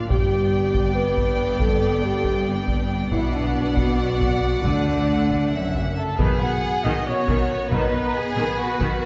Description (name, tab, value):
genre	cinematic, epic orchestral film score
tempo	276 BPM (eighths)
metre	7/8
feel	straight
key	unclear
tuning	A4 = 437 Hz
part	rich symphonic violin section	melody	0.0-9.1 s	F#4 to G5	-34 LUFS	equal	none
part	warm symphonic violin section	second line	0.0-9.1 s	D#4 to E5	-33 LUFS	equal	none
part	clear symphonic viola section	accompaniment	0.0-9.1 s	D#3 to B3	-32 LUFS	equal	none
part	dark French horn section	sustained chords	0.0-9.1 s	F#3 to B4	-28 LUFS	equal	none
part	clear symphonic cello section	bass	0.0-8.9 s	F#2 to D3	-31 LUFS	equal	none
part	rich symphonic double bass section	bass	0.0-8.9 s	F#1 to D2	-30 LUFS	equal	none
part	taiko ensemble	drums	0.1-9.1 s	none	-29 LUFS	equal	none
part	mellow trumpet section	stabs	6.0-9.1 s	F#4 to F#5	-29 LUFS	equal	none
part	warm trombone section	sustained chords	6.2-7.9 s	D#3 to B3	-37 LUFS	equal	none
part	timpani	percussion	6.2-6.8 s	B2	-32 LUFS	equal	none
room	wet scoring stage reverb, RT60 1.9 s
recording	heard from further back in the room, nothing above 7.7 kHz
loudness	-22 LUFS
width	mono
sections	0.0-6.2 A section; 6.2-9.1 B section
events	none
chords	0.1 G; 3.1 Bm; 4.6 D; 5.5 F#7; 6.2 B